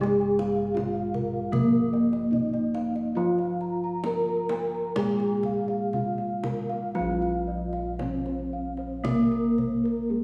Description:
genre	Javanese gamelan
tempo	57-83 BPM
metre	4/4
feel	straight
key	Bb slendro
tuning	A4 = 438 Hz
part	gamelan-type bronze metallophone	melody	0.0-10.2 s	Ab3-40c to Bb4	-32 LUFS	equal	none
part	gamelan-type bronze metallophone	accompaniment	0.0-10.2 s	F3+20c to Bb3	-31 LUFS	equal	none
part	gamelan-type bronze metallophone	arpeggios	0.0-10.2 s	Ab4-40c to Bb5	-36 LUFS	equal	none
part	gamelan-type bossed gongs	bass	0.0-10.2 s	Bb1 to Ab4-40c	-35 LUFS	equal	none
part	kendang	percussion	0.0-10.0 s	none	-37 LUFS	equal	none
room	wet scoring stage reverb, RT60 1.7 s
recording	recorded in a church or concert hall, studio ambience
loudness	-27 LUFS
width	mono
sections	0.0-7.0 A section; 7.0-10.2 B section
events	none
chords	none

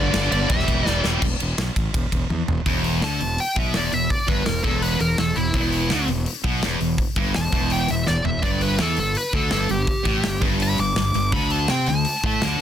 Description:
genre	heavy metal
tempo	166 BPM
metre	4/4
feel	straight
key	E minor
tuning	A4 = 435 Hz
part	high-gain lead guitar	melody	0.0-12.6 s	E4 to D6	-25 LUFS	equal	distortion
part	high-gain distorted guitar	riff	0.0-12.6 s	E2 to C4	-24 LUFS	equal	distortion
part	fuzz fingered electric bass	bass	0.0-12.6 s	E1 to C3	-25 LUFS	equal	overdrive
part	modern studio drum kit	drums	0.1-12.5 s	crash cymbal, hi-hat, kick drum, ride cymbal, snare drum, toms	-25 LUFS	equal	soft clipping on snare
room	little or no reverb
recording	dense, heavily limited modern master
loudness	-19 LUFS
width	side -10 dB against mid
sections	0.0-1.2 A section; 1.2-2.7 B section; 2.7-12.6 C section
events	drum fill 0.9-1.2, 2.3-2.7, 8.1-8.4; lead electric guitar solo 2.7-12.6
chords	0.0 G5; 0.5 Em; 1.2 E5; 8.4 G5; 11.3 D5

